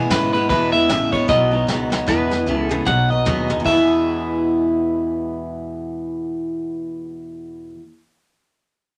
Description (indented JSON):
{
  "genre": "rockabilly",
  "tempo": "152 BPM",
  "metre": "4/4",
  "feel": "swing 59% on 8ths",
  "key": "E major",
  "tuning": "A4 = 441 Hz",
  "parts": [
    { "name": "electric guitar at the edge of break-up", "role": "melody", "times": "0.0-7.7 s", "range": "G#4 to F#5", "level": "-22 LUFS", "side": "equal", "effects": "none" },
    { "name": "picked steel-string acoustic guitar", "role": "accompaniment", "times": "0.0-7.9 s", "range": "E2 to G#4", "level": "-24 LUFS", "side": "equal", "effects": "none" },
    { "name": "electric guitar through a small old amp", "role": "riff", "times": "0.0-7.8 s", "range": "E2 to E4", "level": "-27 LUFS", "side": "equal", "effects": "none" },
    { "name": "upright bass", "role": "bass", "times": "0.0-7.7 s", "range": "A1 to G#2", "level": "-30 LUFS", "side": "equal", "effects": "none" },
    { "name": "soft brush drum kit", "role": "drums", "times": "0.1-3.8 s", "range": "crash cymbal, kick drum, ride cymbal, snare drum, toms", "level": "-28 LUFS", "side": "equal", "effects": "none" }
  ],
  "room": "moderate studio reverb, RT60 0.5 s",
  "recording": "none",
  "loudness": "-19 LUFS",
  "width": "mono",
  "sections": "0.0-2.1 A section; 2.1-3.7 B section; 3.7-6.8 C section",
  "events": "drum fill 1.3-2.1, 2.1-3.7",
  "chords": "0.0 E; 1.3 B; 2.1 E; 2.9 B; 3.7 E"
}